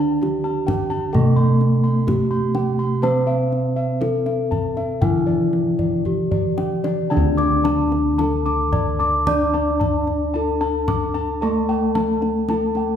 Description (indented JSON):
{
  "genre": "Javanese gamelan",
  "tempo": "56-67 BPM",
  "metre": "4/4",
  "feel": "straight",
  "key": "D slendro",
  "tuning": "A4 = 440 Hz",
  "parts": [
    { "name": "gamelan-type bronze metallophone", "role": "melody", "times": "0.0-13.0 s", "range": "D4 to D5", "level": "-23 LUFS", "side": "left 1 dB", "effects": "none" },
    { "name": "gamelan-type bronze metallophone", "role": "accompaniment", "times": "0.0-13.0 s", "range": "D3 to D4", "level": "-24 LUFS", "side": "equal", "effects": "none" },
    { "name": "gamelan-type bossed gongs", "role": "arpeggios", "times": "0.0-13.0 s", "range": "D5 to D6", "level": "-27 LUFS", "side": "left 2 dB", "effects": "none" },
    { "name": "gamelan-type bossed gongs", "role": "bass", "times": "0.0-13.0 s", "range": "D2 to C5-45c", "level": "-23 LUFS", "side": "equal", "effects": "none" },
    { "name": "kendang", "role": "percussion", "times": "0.2-12.9 s", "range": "none", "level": "-27 LUFS", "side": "left 1 dB", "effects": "none" },
    { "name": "gamelan-type bronze metallophone", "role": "arpeggios", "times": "7.1-13.0 s", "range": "D5 to D6", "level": "-28 LUFS", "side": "right 6 dB", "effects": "none" }
  ],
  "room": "wet recital hall reverb, RT60 1.6 s",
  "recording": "heard from further back in the room",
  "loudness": "-17 LUFS",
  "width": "side -8 dB against mid",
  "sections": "0.0-7.1 A section; 7.1-13.0 B section",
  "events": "drum fill 5.8-7.1",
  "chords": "none"
}